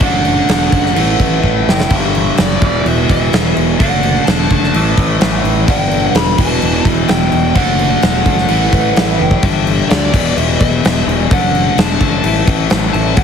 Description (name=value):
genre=hard rock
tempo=128 BPM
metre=4/4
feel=straight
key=unclear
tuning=A4 = 436 Hz
part: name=dark smooth lead guitar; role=melody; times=0.0-13.2 s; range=D5 to B5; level=-20 LUFS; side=equal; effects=overdrive, slapback echo
part: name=overdriven electric guitar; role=riff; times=0.0-13.2 s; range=E2 to D4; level=-18 LUFS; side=left 12 dB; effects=none
part: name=overdriven semi-hollow guitar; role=riff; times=0.0-9.4 s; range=E2 to D4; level=-18 LUFS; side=right 12 dB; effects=phaser
part: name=fuzz fingered electric bass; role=bass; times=0.0-13.2 s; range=E1 to D2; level=-18 LUFS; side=equal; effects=overdrive
part: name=huge arena drum kit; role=drums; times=0.0-13.2 s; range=crash cymbal, kick drum, snare drum, toms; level=-14 LUFS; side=equal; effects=none
room=studio reverb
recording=heavily compressed radio sound, multiband compression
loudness=-10 LUFS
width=side -7 dB against mid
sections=0.0-9.4 A section; 9.4-13.2 A section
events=drum fill 1.4-1.9, 9.2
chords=0.0 D/F#; 1.0 A5; 1.9 G5; 2.6 E5; 3.8 D/F#; 4.7 A5; 5.7 G5; 6.4 Em; 7.6 D/F#; 8.5 A5; 9.4 G5; 10.1 E5; 11.3 D/F#; 12.2 A5